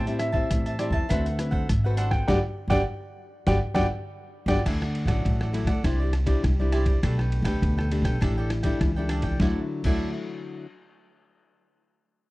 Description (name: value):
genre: samba and choro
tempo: 101 BPM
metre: 4/4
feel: straight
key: G major, D major from 4.7 s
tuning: A4 = 440 Hz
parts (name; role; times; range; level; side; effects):
- warm baby grand piano; melody; 0.0-4.6 s; D5 to G5; -30 LUFS; right 1 dB; none
- cavaquinho; accompaniment; 0.0-10.1 s; D4 to A5; -34 LUFS; right 2 dB; none
- nylon-string guitar; accompaniment; 0.0-10.7 s; A2 to B4; -30 LUFS; left 3 dB; none
- upright bass; bass; 0.0-10.1 s; G1 to A2; -26 LUFS; equal; none
- trip hop sampler-style drum kit; drums; 0.1-10.0 s; crash cymbal, hi-hat, kick drum, ride cymbal, rim click, snare drum; -27 LUFS; equal; none
room: studio reverb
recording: dry, close 1970s-style studio recording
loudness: -22 LUFS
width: side -20 dB against mid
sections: 0.0-4.7 A section; 4.7-9.4 B section; 9.4-11.8 C section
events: band accent 2.3-4.7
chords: 0.0 Am7; 1.1 D13; 2.3 Gmaj7; 4.7 Dadd9; 5.8 Cadd9; 7.0 Gadd9/B; 8.2 A7sus4; 9.4 Dadd9